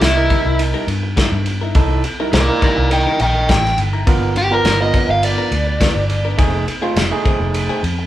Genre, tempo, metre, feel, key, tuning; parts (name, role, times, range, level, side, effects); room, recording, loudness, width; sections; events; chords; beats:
straight-eighth soul blues; 104 BPM; 4/4; swing 53% on 16ths; A4 = 440 Hz
overdriven semi-hollow guitar; melody; 0.0-6.4 s; E4 to G5; -18 LUFS; equal
overdriven tine electric piano; accompaniment; 0.0-7.8 s; A3 to D#5; -22 LUFS; right 3 dB
direct-recorded clean electric guitar; stabs; 0.0-8.0 s; Eb3 to Bb4; -27 LUFS; left 5 dB; phaser
vintage muted fingered electric bass; bass; 0.0-8.1 s; F1 to G2; -19 LUFS; equal
warm soul drum kit; drums; 0.0-8.0 s; kick drum, ride cymbal, snare drum; -18 LUFS; equal
light reverb; band playing live in one room; -14 LUFS; side -13 dB against mid
0.0-8.1 A section
overdriven electric guitar solo 0.0-8.1
0.0 C7#9; 4.1 G7#9; 6.4 F7#9
0.02 0.59 1.17 | 1.75 2.33 2.91 3.49 | 4.07 4.65 5.23 5.81 | 6.39 6.97 7.55